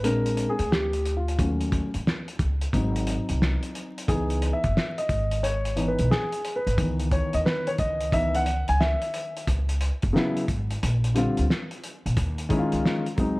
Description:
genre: hip hop, jazz-hop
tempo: 89 BPM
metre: 4/4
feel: swing 65% on 16ths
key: C# minor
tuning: A4 = 440 Hz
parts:
  - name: dark grand piano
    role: accompaniment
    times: 0.0-13.4 s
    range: C#3 to G#5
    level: -26 LUFS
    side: left 1 dB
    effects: none
  - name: upright bass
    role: bass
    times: 0.0-13.4 s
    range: F#1 to D#2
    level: -26 LUFS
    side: equal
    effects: none
  - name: cloth-damped thuddy drum kit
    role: drums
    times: 0.0-13.4 s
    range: hi-hat, kick drum, snare drum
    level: -28 LUFS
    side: equal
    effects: none
room: small room ambience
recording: dark, warm production, vinyl crackle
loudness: -23 LUFS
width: side -22 dB against mid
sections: 0.0-9.5 A section; 9.5-13.4 B section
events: grand piano solo 0.0-9.5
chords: 0.0 A#7; 1.4 D#m7b5; 2.7 G#7; 4.1 C#m7; 10.8 A#; 12.2 C#maj9

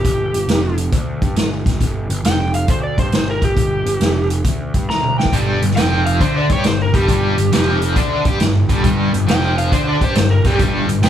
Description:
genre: blues rock power trio and southern rock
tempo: 136 BPM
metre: 4/4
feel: swing 67% on 8ths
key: G minor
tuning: A4 = 440 Hz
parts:
  - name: overdriven slide guitar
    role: melody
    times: 0.0-11.1 s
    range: G4 to Bb5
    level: -21 LUFS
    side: equal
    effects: none
  - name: fuzz picked electric bass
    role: bass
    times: 0.0-11.1 s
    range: F1 to G2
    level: -20 LUFS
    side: right 1 dB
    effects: overdrive
  - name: vintage drum kit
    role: drums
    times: 0.0-11.1 s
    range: hi-hat, kick drum, snare drum, toms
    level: -18 LUFS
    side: equal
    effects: none
  - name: overdriven electric guitar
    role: riff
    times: 5.3-11.1 s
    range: F2 to G4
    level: -17 LUFS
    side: left 1 dB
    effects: tremolo
room: light reverb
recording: band playing live in one room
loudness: -14 LUFS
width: side -10 dB against mid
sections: 0.0-11.1 A section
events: drum fill 4.9-5.3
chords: 0.0 G5

